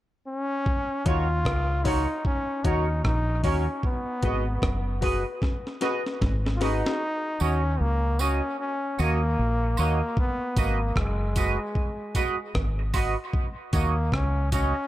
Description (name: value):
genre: dub reggae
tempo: 76 BPM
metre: 4/4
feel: swing 61% on 16ths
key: Eb minor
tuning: A4 = 440 Hz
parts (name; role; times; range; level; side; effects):
- brilliant trombone; melody; 0.3-14.9 s; Ab3 to F4; -29 LUFS; left 1 dB; dub echo
- breakbeat sampler-style drum kit; drums; 0.7-14.7 s; hi-hat, kick drum, rim click, snare drum; -28 LUFS; equal; none
- dark upright piano; stabs; 1.0-7.0 s; Eb4 to Db5; -34 LUFS; left 6 dB; dub echo
- twangy electric guitar; accompaniment; 1.1-14.7 s; Gb4 to Eb5; -32 LUFS; right 5 dB; analog chorus, dub echo
- deep dub fingered electric bass; bass; 1.1-14.7 s; Gb1 to Eb2; -26 LUFS; equal; none
- tambourine and woodblock; percussion; 7.4-14.7 s; none; -39 LUFS; right 5 dB; dub echo
room: light reverb, studio reverb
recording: none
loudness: -23 LUFS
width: side -14 dB against mid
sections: 0.7-7.0 A section; 7.0-14.9 B section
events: drum fill 5.4-7.0; part muted 7.0-10.2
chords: 0.0 N.C.; 0.7 Ebm7; 3.8 Abm7; 7.0 Ebm7; 10.2 Abm7; 13.3 Ebm7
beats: | 0.66 1.46 2.25 3.04 | 3.83 4.62 5.42 6.21 | 7.00 7.79 8.59 9.38 | 10.17 10.96 11.75 12.54 | 13.33 14.12